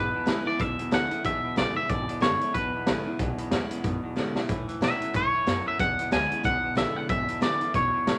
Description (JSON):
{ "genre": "rockabilly", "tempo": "185 BPM", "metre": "4/4", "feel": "swing 59% on 8ths", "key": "E mixolydian", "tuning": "A4 = 440 Hz", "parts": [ { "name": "twangy electric guitar", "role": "melody", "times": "0.0-8.2 s", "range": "B4 to G#5", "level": "-29 LUFS", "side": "equal", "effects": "none" }, { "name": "picked steel-string acoustic guitar", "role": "accompaniment", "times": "0.0-8.2 s", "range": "E2 to E4", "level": "-37 LUFS", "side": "equal", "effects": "none" }, { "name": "twangy electric guitar", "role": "riff", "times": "0.0-8.2 s", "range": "E2 to F#3", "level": "-38 LUFS", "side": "equal", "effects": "none" }, { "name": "upright bass", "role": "bass", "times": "0.0-8.2 s", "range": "E1 to B2", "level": "-39 LUFS", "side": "equal", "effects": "none" }, { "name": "raw garage drum kit", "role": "drums", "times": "0.3-8.2 s", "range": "hi-hat, kick drum, snare drum", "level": "-32 LUFS", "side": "equal", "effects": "none" } ], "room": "moderate club reverb, RT60 0.7 s", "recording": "none", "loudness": "-27 LUFS", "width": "mono", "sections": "0.0-8.2 A section", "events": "drum fill 4.2-4.5", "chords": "0.0 E7; 4.5 A7; 5.8 E7" }